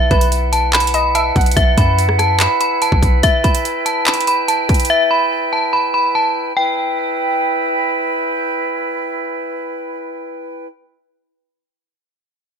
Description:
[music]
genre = hip hop, trap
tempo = 144 BPM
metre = 4/4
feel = half-time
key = E minor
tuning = A4 = 440 Hz
[part]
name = metallic FM bell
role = melody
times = 0.0-7.8 s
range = E5 to B5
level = -17 LUFS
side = left 1 dB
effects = chorus, low-pass filter
[part]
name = mellow flute section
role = sustained chords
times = 0.0-10.7 s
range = E4 to G5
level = -20 LUFS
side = right 2 dB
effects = none
[part]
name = warm 808-style bass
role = bass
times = 0.0-3.2 s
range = B1 to F#2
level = -17 LUFS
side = equal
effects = none
[part]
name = warbly dusty pluck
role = second line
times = 0.1-1.6 s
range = B4 to F#5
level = -24 LUFS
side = right 2 dB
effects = chorus, ping-pong delay
[part]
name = trap drum kit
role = drums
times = 0.1-4.9 s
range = handclaps, hi-hat, kick drum, rim click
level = -16 LUFS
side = equal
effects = none
[sound]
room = little or no reverb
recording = none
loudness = -13 LUFS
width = side -6 dB against mid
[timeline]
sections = 0.0-6.6 A section; 6.6-9.9 B section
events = none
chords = 0.0 Bsus4; 3.2 Em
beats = 0.32 0.73 1.15 | 1.57 1.98 2.40 2.82 | 3.23 3.65 4.07 4.48 | 4.90 5.32 5.73 6.15 | 6.57 6.98 7.40 7.82 | 8.23 8.65 9.07 9.48

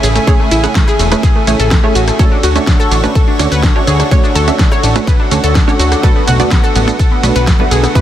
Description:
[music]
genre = progressive house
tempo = 125 BPM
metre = 4/4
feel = straight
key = unclear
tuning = A4 = 440 Hz
[part]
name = lush unison pad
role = sustained chords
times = 0.0-8.0 s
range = C#3 to C#5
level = -18 LUFS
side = equal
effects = chorus, sidechain pumping
[part]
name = analog pluck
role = arpeggios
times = 0.0-8.0 s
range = A3 to C#5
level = -17 LUFS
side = equal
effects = chorus, sidechain pumping, tape echo
[part]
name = wide unison pluck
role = stabs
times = 0.0-8.0 s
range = A3 to F#5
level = -18 LUFS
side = right 4 dB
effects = sidechain pumping, tape echo
[part]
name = fat analog bass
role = bass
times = 0.0-7.9 s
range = E1 to D2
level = -14 LUFS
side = equal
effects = sidechain pumping
[part]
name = pop drum kit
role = drums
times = 0.0-8.0 s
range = hi-hat, ride cymbal, rim click, shaker, snare drum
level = -19 LUFS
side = equal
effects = none
[part]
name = electronic kick drum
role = drums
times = 0.3-8.0 s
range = none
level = -11 LUFS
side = equal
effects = none
[part]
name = congas and bongos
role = percussion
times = 6.0-8.0 s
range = none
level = -23 LUFS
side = right 3 dB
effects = none
[sound]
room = little or no reverb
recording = dense, heavily limited modern master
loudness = -9 LUFS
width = side -11 dB against mid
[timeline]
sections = 0.0-8.0 A section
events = none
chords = 0.0 Amaj7; 2.2 Dmaj7; 6.0 Bm7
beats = | 0.27 0.75 1.23 1.71 | 2.19 2.67 3.15 3.63 | 4.11 4.59 5.07 5.55 | 6.03 6.51 6.99 7.47 | 7.95

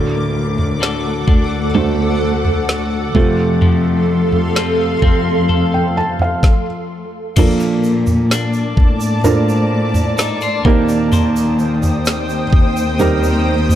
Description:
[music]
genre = pop ballad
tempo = 64 BPM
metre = 4/4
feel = straight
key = Bb major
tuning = A4 = 440 Hz
[part]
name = felt-muted upright piano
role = accompaniment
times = 0.0-13.8 s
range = A2 to A5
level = -19 LUFS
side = right 4 dB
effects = none
[part]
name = granular cloud pad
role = sustained chords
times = 0.0-13.8 s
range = A4 to Eb6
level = -21 LUFS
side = equal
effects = built-in reverb
[part]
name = electric guitar at the edge of break-up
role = arpeggios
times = 0.0-13.8 s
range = D3 to C5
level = -23 LUFS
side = left 6 dB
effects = none
[part]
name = dark studio cello section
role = bass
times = 0.0-13.8 s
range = D2 to Bb2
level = -19 LUFS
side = left 1 dB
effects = none
[part]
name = smooth R&B drum kit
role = drums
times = 0.6-13.8 s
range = crash cymbal, kick drum, snare drum, toms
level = -15 LUFS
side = equal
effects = none
[part]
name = tube shaker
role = percussion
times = 7.4-13.8 s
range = none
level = -34 LUFS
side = right 6 dB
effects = none
[sound]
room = light reverb, small room ambience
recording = dark, warm production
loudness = -13 LUFS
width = side -11 dB against mid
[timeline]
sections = 0.0-7.4 A section; 7.4-13.8 B section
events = stop 6.4-7.4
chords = 0.0 D; 3.1 F; 7.4 Bbmaj7; 10.7 Eb6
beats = 0.81 1.74 2.68 | 3.62 4.56 5.49 6.43 | 7.37 8.31 9.24 10.18 | 11.12 12.06 12.99

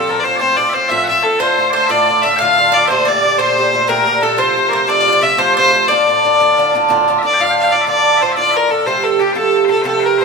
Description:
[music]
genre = celtic folk, Celtic slip jig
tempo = 120 BPM (dotted quarters)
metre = 9/8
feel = straight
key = D minor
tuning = A4 = 444 Hz
[part]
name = clear fiddle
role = melody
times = 0.0-10.2 s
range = G4 to F5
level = -14 LUFS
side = left 1 dB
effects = none
[part]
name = loud bright bagpipes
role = second line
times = 0.0-10.2 s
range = G4 to G5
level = -18 LUFS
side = left 4 dB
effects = none
[part]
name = Irish bouzouki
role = accompaniment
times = 0.0-10.2 s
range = A2 to G4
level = -17 LUFS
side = right 4 dB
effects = none
[part]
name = mandolin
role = second line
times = 1.4-7.0 s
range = A4 to F5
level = -18 LUFS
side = left 2 dB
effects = none
[sound]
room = moderate recital hall reverb, RT60 1.8 s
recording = minimal, uncompressed stereo recording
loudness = -11 LUFS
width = side -4 dB against mid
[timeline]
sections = 0.0-7.4 A section; 7.4-10.2 B section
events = none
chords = 0.0 F; 1.4 Dm; 2.9 Gmadd9; 4.4 F; 5.9 Dm; 8.9 Fadd9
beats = 0.40 0.90 | 1.40 1.90 2.40 | 2.90 3.39 3.89 | 4.39 4.89 5.39 | 5.88 6.38 6.88 | 7.38 7.87 8.37 | 8.87 9.36 9.86

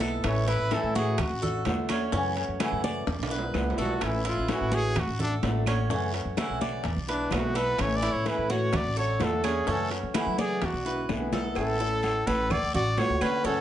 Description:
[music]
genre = latin, Cuban son and guajira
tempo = 127 BPM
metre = 4/4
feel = straight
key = A major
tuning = A4 = 440 Hz
[part]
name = fingerpicked acoustic archtop guitar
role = accompaniment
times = 0.0-13.6 s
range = B2 to F#4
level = -32 LUFS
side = left 1 dB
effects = none
[part]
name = Cuban tres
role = arpeggios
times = 0.0-13.6 s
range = C#4 to D5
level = -33 LUFS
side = right 3 dB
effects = none
[part]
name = upright bass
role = bass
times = 0.0-13.6 s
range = A1 to F#3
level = -31 LUFS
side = equal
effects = none
[part]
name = bongos and cowbell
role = percussion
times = 0.0-13.6 s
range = none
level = -37 LUFS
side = left 7 dB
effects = none
[part]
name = congas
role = percussion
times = 0.0-13.6 s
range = none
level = -34 LUFS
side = equal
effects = none
[part]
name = guiro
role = percussion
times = 0.0-13.6 s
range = none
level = -43 LUFS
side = left 3 dB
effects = none
[part]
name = timbales and agogo bells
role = percussion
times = 0.0-13.4 s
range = none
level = -36 LUFS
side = right 3 dB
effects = none
[part]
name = claves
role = percussion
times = 0.2-13.4 s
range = none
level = -42 LUFS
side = right 5 dB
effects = none
[part]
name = breathy trumpet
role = melody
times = 0.3-13.6 s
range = C#4 to D5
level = -30 LUFS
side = equal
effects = none
[sound]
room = moderate studio reverb, RT60 0.6 s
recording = nothing above 10.3 kHz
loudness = -25 LUFS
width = side -11 dB against mid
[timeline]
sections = 0.0-11.6 A section; 11.6-13.6 B section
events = trumpet solo 0.0-11.6; drum fill 3.1-4.0, 10.9-11.6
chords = 0.2 A; 1.2 D; 2.1 F#m7; 3.1 E7; 4.0 A; 5.0 D; 5.9 F#m7; 6.8 E7; 7.8 A; 8.7 D; 9.7 F#m7; 10.6 E7; 11.6 A; 12.5 D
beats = | 0.24 0.71 1.18 1.66 | 2.13 2.60 3.07 3.54 | 4.02 4.49 4.96 5.43 | 5.90 6.37 6.84 7.32 | 7.79 8.26 8.73 9.20 | 9.68 10.15 10.62 11.09 | 11.56 12.03 12.50 12.97 | 13.45

